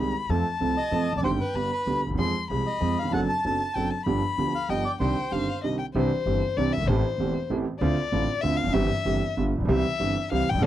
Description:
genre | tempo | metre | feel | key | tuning
tango | 192 BPM | 3/4 | rubato | C harmonic minor, C major from 5.9 s | A4 = 436 Hz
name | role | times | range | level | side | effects
warm violin | second line | 0.0-10.7 s | C5 to C6 | -30 LUFS | left 7 dB | none
clear concert grand piano | accompaniment | 0.0-10.7 s | E1 to A4 | -26 LUFS | right 3 dB | none
upright bass | bass | 0.0-10.7 s | E1 to F2 | -30 LUFS | left 1 dB | none
bandoneon | melody | 0.8-5.6 s | B4 to A5 | -29 LUFS | right 1 dB | none
room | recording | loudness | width
little or no reverb | dry, close 1970s-style studio recording | -23 LUFS | side -12 dB against mid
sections
0.0-5.9 A section; 5.9-10.7 B section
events
violin solo 5.9-10.7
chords
0.3 F; 1.2 Cm/G; 1.5 G; 2.2 Fm; 3.1 D7/F#; 4.1 G7; 5.0 Cmadd9; 5.9 Cadd9; 6.9 Am7; 7.8 Dm7; 8.7 C/G; 9.4 G7; 9.7 C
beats
| 0.29 0.60 0.92 | 1.23 1.54 1.86 | 2.18 2.50 2.81 | 3.13 3.44 3.75 | 4.06 4.37 4.68 | 5.00 5.31 5.63 | 5.95 6.26 6.58 | 6.89 7.20 7.50 | 7.82 8.12 8.44 | 8.75 9.06 9.38 | 9.69 10.01 10.32 | 10.63

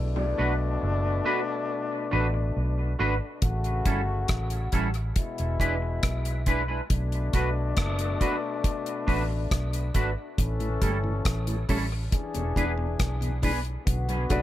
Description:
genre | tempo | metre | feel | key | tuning
dub reggae | 69 BPM | 4/4 | straight | B minor | A4 = 440 Hz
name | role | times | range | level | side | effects
warm trombone section | second line | 0.0-14.4 s | B2 to A4 | -32 LUFS | left 4 dB | dub echo
vintage muted fingered electric bass | bass | 0.0-14.4 s | E1 to B1 | -28 LUFS | equal | none
mellow tonewheel organ | accompaniment | 0.2-0.3, 10.6-14.4 s | E2 to D4 | -36 LUFS | left 1 dB | slow rotary speaker, dub echo
semi-hollow electric guitar | accompaniment | 0.4-14.4 s | G3 to B4 | -31 LUFS | right 2 dB | analog chorus, dub echo
deep reggae drum kit | drums | 3.4-14.4 s | hi-hat, kick drum, rim click | -27 LUFS | equal | none
dark grand piano | stabs | 14.3-14.4 s | F#4 to D5 | -37 LUFS | left 2 dB | none
bongos | percussion | 14.3-14.4 s | none | -46 LUFS | equal | none
room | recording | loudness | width
light reverb, studio ambience | none | -24 LUFS | side -13 dB against mid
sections
0.0-14.4 A section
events
break 0.0-13.9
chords
0.0 Bm7; 3.4 A7; 5.2 E7; 6.9 Bm7; 10.4 A7; 12.1 E7; 13.9 Bm7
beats
0.81 1.68 2.55 | 3.42 4.29 5.16 6.03 | 6.90 7.77 8.64 9.51 | 10.38 11.26 12.12 13.00 | 13.87

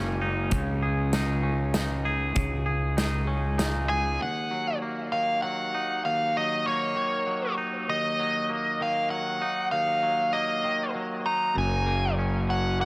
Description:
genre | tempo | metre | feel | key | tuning
post-rock | 98 BPM | 3/4 | straight | Eb minor | A4 = 438 Hz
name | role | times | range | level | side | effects
twangy electric guitar | arpeggios | 0.0-12.8 s | Eb2 to Ab4 | -33 LUFS | equal | spring reverb, tape echo
fuzz fingered electric bass | bass | 0.0-4.2, 11.6-12.8 s | Gb1 to Db2 | -30 LUFS | equal | overdrive
big rock drum kit | drums | 0.5-3.7 s | hi-hat, kick drum, snare drum | -34 LUFS | equal | none
nasal lead guitar with a parked wah | melody | 3.9-12.8 s | Db5 to Bb5 | -29 LUFS | equal | overdrive, tape echo
room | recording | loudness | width
moderate huge ambient reverb, RT60 5.1 s | none | -27 LUFS | mono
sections
0.0-4.2 A section; 4.2-12.8 B section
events
none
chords
0.0 Gb6; 0.5 Dbsus2; 4.2 Ebm; 11.6 Gb6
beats
| 0.53 1.14 1.75 | 2.37 2.98 3.60 | 4.21 4.82 5.43 | 6.05 6.66 7.28 | 7.89 8.50 9.11 | 9.73 10.34 10.95 | 11.56 12.18 12.79

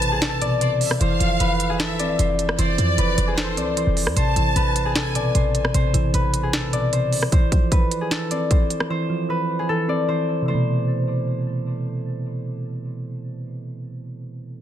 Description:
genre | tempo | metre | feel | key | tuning
hip hop, trap | 152 BPM | 4/4 | half-time | A harmonic minor | A4 = 441 Hz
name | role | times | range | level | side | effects
concert harp | melody | 0.0-12.5 s | G#4 to D5 | -25 LUFS | left 3 dB | tape echo
warm studio violin section | second line | 0.0-5.3 s | C5 to A5 | -27 LUFS | equal | tape echo
soft electric-piano-like synth keys | accompaniment | 0.0-14.6 s | B2 to C4 | -24 LUFS | right 2 dB | chorus
short 808-style bass | bass | 0.0-7.3 s | F1 to F2 | -23 LUFS | equal | none
trap drum kit | drums | 0.0-8.9 s | hi-hat, kick drum, rim click, snare drum | -22 LUFS | equal | none
room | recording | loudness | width
digital ambience | dense, heavily limited modern master | -19 LUFS | side -10 dB against mid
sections
0.0-10.5 A section; 10.5-13.6 B section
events
none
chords
0.0 Amadd9; 1.0 F5; 4.2 Amadd9; 7.3 F5; 10.5 Amadd9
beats
0.22 0.61 | 1.01 1.40 1.80 2.19 | 2.59 2.98 3.38 3.77 | 4.17 4.56 4.96 5.35 | 5.74 6.14 6.53 6.93 | 7.32 7.72 8.11 8.51 | 8.90 9.30 9.69 10.09 | 10.48 10.88 11.27 11.66 | 12.06 12.46 12.85 13.24

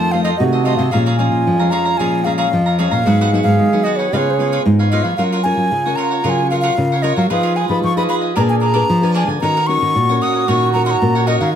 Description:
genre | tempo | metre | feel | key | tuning
samba | 113 BPM | 4/4 | straight | unclear | A4 = 439 Hz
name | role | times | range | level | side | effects
wooden flute | melody | 0.0-11.5 s | C5 to Eb6 | -19 LUFS | left 1 dB | plate reverb
mellow trombone | second line | 0.0-11.6 s | F4 to Ab4 | -22 LUFS | right 8 dB | none
cavaquinho | accompaniment | 0.0-11.5 s | D4 to Bb5 | -23 LUFS | right 2 dB | none
nylon-string guitar | accompaniment | 0.0-11.6 s | F2 to Cb5 | -22 LUFS | left 6 dB | none
nylon-string guitar | bass | 0.0-11.5 s | Ab2 to Ab3 | -17 LUFS | equal | none
room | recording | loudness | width
light reverb | close, detailed microphones | -13 LUFS | side -9 dB against mid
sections
0.0-11.6 A section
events
none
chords
0.0 F7; 0.9 Bbm7; 3.1 Abm7; 4.1 Db7; 5.2 Gbmaj7; 7.3 Fm7b5; 8.4 Bb7b9; 9.4 Ebm7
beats
0.41 | 0.94 1.47 2.00 2.53 | 3.06 3.59 4.12 4.66 | 5.19 5.72 6.25 6.78 | 7.31 7.84 8.37 8.90 | 9.43 9.96 10.49 11.02 | 11.55

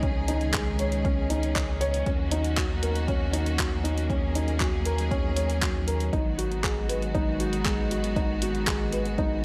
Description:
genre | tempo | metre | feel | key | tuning
piano and strings electronica | 118 BPM | 4/4 | straight | Eb minor | A4 = 440 Hz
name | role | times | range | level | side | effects
rich studio string section | sustained chords | 0.0-9.4 s | Db3 to Ab4 | -35 LUFS | equal | none
felt-muted upright piano | riff | 0.0-9.4 s | Db4 to Eb5 | -32 LUFS | equal | digital delay
warm sub bass | bass | 0.0-9.4 s | Ab1 to Eb2 | -32 LUFS | equal | sidechain pumping
deep house drum kit | drums | 0.0-9.3 s | handclaps, hi-hat | -34 LUFS | equal | none
electronic kick drum | drums | 0.0-9.3 s | none | -32 LUFS | equal | none
room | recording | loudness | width
light reverb, digital ambience | none | -27 LUFS | mono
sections
0.0-9.4 A section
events
none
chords
0.0 Dbsus2; 2.1 Ebm7; 6.1 Abm7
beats
| 0.03 0.54 1.05 1.55 | 2.06 2.57 3.08 3.59 | 4.10 4.61 5.11 5.62 | 6.13 6.64 7.15 7.66 | 8.16 8.67 9.18

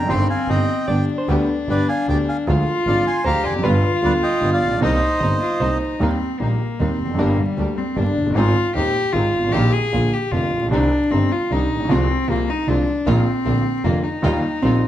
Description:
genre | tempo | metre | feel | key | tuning
tango | 153 BPM | 3/4 | rubato | C minor, Eb major from 6.0 s | A4 = 439 Hz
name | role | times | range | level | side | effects
bandoneon | melody | 0.0-5.8 s | B4 to C6 | -23 LUFS | right 1 dB | none
rich cello | second line | 0.0-14.9 s | G3 to Ab4 | -22 LUFS | left 2 dB | none
warm concert grand piano | accompaniment | 0.0-14.8 s | Eb1 to Ab4 | -23 LUFS | right 1 dB | none
bright double bass | bass | 0.0-14.8 s | F1 to Eb2 | -22 LUFS | equal | none
rich studio string section | stabs | 0.1-14.8 s | G3 to G4 | -30 LUFS | right 3 dB | none
hollow-body jazz guitar | second line | 0.9-6.0, 14.6-14.9 s | C4 to Eb5 | -25 LUFS | right 1 dB | none
room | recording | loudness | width
moderate large studio reverb, RT60 1.4 s | dark, warm production, vinyl crackle | -17 LUFS | side -12 dB against mid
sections
0.0-6.0 A section; 6.0-14.9 B section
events
cello solo 6.0-14.9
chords
0.1 Cm/G; 0.9 G; 2.5 Ddim; 3.6 G7; 4.8 Cm7; 6.0 Eb; 7.2 Gm; 8.4 Ab; 9.5 Bbsus4; 9.9 Bb; 10.7 Cmadd9; 11.9 Fm/C; 13.1 Bbsus4; 13.5 Bb; 14.2 Ebadd9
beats
| 0.09 0.48 0.88 | 1.28 1.68 2.08 | 2.47 2.86 3.25 | 3.64 4.03 4.42 | 4.82 5.21 5.60 | 6.01 6.40 6.80 | 7.19 7.58 7.97 | 8.36 8.75 9.14 | 9.53 9.92 10.32 | 10.72 11.12 11.51 | 11.90 12.29 12.68 | 13.07 13.46 13.85 | 14.24 14.63

